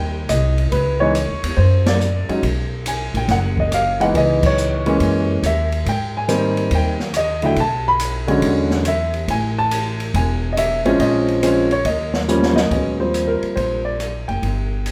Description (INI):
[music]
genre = jazz piano trio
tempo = 140 BPM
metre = 4/4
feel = swing 67% on 8ths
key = unclear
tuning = A4 = 440 Hz
[part]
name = warm grand piano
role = melody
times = 0.0-14.9 s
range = D3 to B5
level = -21 LUFS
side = equal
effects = none
[part]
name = upright bass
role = bass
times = 0.0-14.9 s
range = E1 to Ab2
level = -24 LUFS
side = equal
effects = none
[part]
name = open jazz drum kit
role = drums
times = 0.3-14.9 s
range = crash cymbal, hi-hat, kick drum, ride cymbal, rim click, snare drum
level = -27 LUFS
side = equal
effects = none
[sound]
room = moderate large studio reverb, RT60 0.9 s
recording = band playing live in one room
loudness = -18 LUFS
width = mono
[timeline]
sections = 0.0-12.7 A section; 12.7-14.9 B section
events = band accent 1.8, 4.4; drum fill 12.3-12.7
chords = 0.0 Abmaj9 (rootless); 0.7 Dbm9; 1.6 Gb5; 2.4 B5; 4.1 Dbm7; 5.0 Gb9; 5.9 Abmaj9; 7.6 N.C.; 8.4 E13; 9.3 Amaj7(no3); 11.0 Bbm9; 11.9 Eb7; 12.7 Eb6